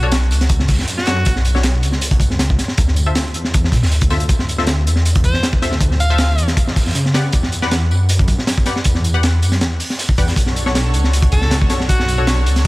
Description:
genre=drum and bass, jungle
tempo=158 BPM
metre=4/4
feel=straight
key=B minor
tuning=A4 = 440 Hz
part: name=edgy alto saxophone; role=melody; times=0.0-1.4, 5.2-6.5, 11.3-12.3 s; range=F#4 to F5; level=-25 LUFS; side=equal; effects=dub echo
part: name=filtered dub chord stab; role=stabs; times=0.0-12.2 s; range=D4 to F#5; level=-26 LUFS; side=left 3 dB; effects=chorus, dub echo
part: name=detuned saw bass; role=bass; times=0.0-12.7 s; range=B1 to C#3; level=-17 LUFS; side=equal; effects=none
part: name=crunchy breakbeat drum kit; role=drums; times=0.1-12.7 s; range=hi-hat, kick drum, snare drum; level=-17 LUFS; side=equal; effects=none
part: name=crunchy breakbeat drum kit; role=drums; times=0.1-12.7 s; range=hi-hat, snare drum, tambourine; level=-29 LUFS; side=right 2 dB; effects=high-pass filter on hats, high-pass filter on snare, high-pass filter on perc, high-pass filter on room
part: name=lush unison pad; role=sustained chords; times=10.4-12.7 s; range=D4 to C#5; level=-25 LUFS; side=equal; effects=chorus
room=small room ambience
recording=vinyl crackle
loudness=-13 LUFS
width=side -20 dB against mid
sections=0.0-12.7 A section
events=none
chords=0.0 Bm9; 2.8 Dm9; 6.6 Em9; 10.4 Bm9

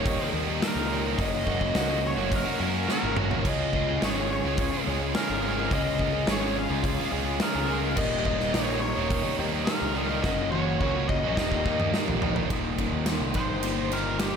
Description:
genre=classic rock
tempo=106 BPM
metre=4/4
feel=straight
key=unclear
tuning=A4 = 438 Hz
part: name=nasal lead guitar with a parked wah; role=melody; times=0.0-14.4 s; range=G4 to F5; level=-31 LUFS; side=equal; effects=overdrive
part: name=overdriven electric guitar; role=riff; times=0.0-14.4 s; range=Eb2 to Ab4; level=-31 LUFS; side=left 8 dB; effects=slapback echo
part: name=overdriven semi-hollow guitar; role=riff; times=0.0-14.4 s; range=Eb2 to Ab4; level=-31 LUFS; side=right 11 dB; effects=slapback echo
part: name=fuzz picked electric bass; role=bass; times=0.0-14.3 s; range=Eb1 to Gb2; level=-32 LUFS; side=equal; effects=overdrive
part: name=warm upright piano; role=accompaniment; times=0.1-12.5 s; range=Db4 to Eb5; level=-39 LUFS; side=right 5 dB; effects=none
part: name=big rock drum kit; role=drums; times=0.1-14.3 s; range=crash cymbal, hi-hat, kick drum, ride cymbal, snare drum, toms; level=-29 LUFS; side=right 1 dB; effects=none
room=wet concert hall reverb, RT60 2.1 s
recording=big arena sound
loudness=-24 LUFS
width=side -6 dB against mid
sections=0.0-12.5 A section; 12.5-14.4 B section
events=drum fill 2.9-3.5, 10.2-12.5; lead electric guitar solo 12.5-14.4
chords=0.0 Eb; 1.2 Gb; 3.5 Db; 8.0 Eb; 10.2 Gb; 11.4 Eb

